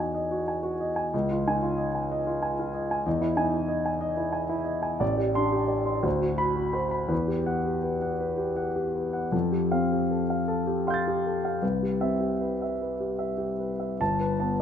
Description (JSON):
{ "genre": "classical, impressionist solo piano", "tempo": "48-64 BPM (dotted quarters)", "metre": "6/8", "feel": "rubato", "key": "unclear", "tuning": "A4 = 439 Hz", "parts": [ { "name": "warm concert grand piano", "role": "solo", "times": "0.0-14.6 s", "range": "G1 to A6", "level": "-25 LUFS", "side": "equal", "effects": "none" } ], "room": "light reverb", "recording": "close, detailed microphones", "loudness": "-25 LUFS", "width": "side -8 dB against mid", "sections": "0.0-14.0 A section", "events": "none", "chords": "0.0 Emaj9; 1.1 C#add9; 3.1 Emaj7; 5.0 Am7; 6.1 D6; 7.1 Emadd9; 9.3 Fadd9; 11.6 Cmaj7; 14.0 Gadd9" }